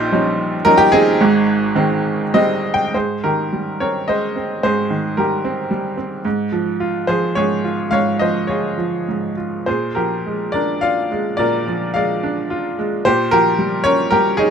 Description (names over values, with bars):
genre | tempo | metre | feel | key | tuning
classical, lyrical solo piano | 98-114 BPM | 3/4 | rubato | Ab major | A4 = 439 Hz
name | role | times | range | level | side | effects
bright upright piano | solo | 0.0-14.5 s | Ab1 to G5 | -15 LUFS | right 1 dB | none
room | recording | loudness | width
light reverb | dark, warm production | -15 LUFS | side -7 dB against mid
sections
0.0-2.9 A section; 2.9-14.5 B section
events
upright piano fill 2.0-2.9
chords
0.0 Eb9/Bb; 1.2 Abmaj7; 2.9 Abmaj9; 6.3 Dbmaj7/Ab; 9.7 Bb7; 13.1 Eb9/Bb (rootless)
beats
0.12 0.66 | 1.21 1.76 2.35 | 2.94 3.52 4.09 | 4.64 5.19 5.72 | 6.25 6.80 7.36 | 7.92 8.49 9.07 | 9.67 10.26 10.83 | 11.38 11.95 12.51 | 13.05 13.58 14.11